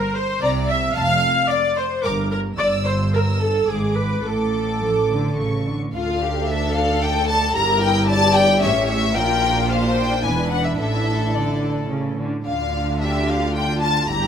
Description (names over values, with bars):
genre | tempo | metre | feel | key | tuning
quick classical-period movement for string orchestra | 105-115 BPM | 3/4 | rubato | D minor | A4 = 440 Hz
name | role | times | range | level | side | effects
warm studio violin section | second line | 0.0-14.3 s | F4 to F5 | -25 LUFS | left 2 dB | none
warm studio viola section | accompaniment | 0.0-14.3 s | C#4 to F5 | -24 LUFS | right 1 dB | none
dark studio violin section | melody | 0.4-14.3 s | D5 to E6 | -23 LUFS | left 4 dB | none
rich studio double bass section | bass | 0.4-14.3 s | E1 to D2 | -25 LUFS | right 2 dB | none
warm studio cello section | bass | 0.4-14.3 s | D2 to F3 | -25 LUFS | equal | none
room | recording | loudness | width
light reverb | close, detailed microphones | -17 LUFS | side -8 dB against mid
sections
0.0-5.9 A section; 5.9-14.3 B section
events
none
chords
0.4 C7; 1.0 F; 2.0 Gm; 2.6 Gm69; 3.7 G#dim; 4.2 D5/A; 5.4 A; 5.9 Dm; 7.6 Edim/G; 8.6 A7; 9.2 Bb; 10.2 E7; 10.8 Asus4; 11.9 A; 12.5 Dm